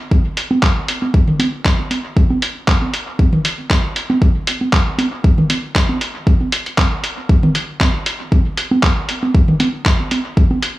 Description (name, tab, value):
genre	techno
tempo	117 BPM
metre	4/4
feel	swing 54% on 16ths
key	none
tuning	none
part	electronic kick drum	drums	0.1-10.5 s	none	-14 LUFS	equal	none
part	electronic congas and toms	percussion	0.1-10.6 s	none	-19 LUFS	right 1 dB	sidechain pumping on perc, sidechain pumping on toms, dub echo
part	lo-fi sampler-style drum kit	drums	0.4-10.7 s	handclaps, hi-hat	-20 LUFS	equal	dub echo
room	light reverb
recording	studio reverb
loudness	-14 LUFS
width	side -17 dB against mid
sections	0.0-7.3 A section; 7.3-10.8 A section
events	none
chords	none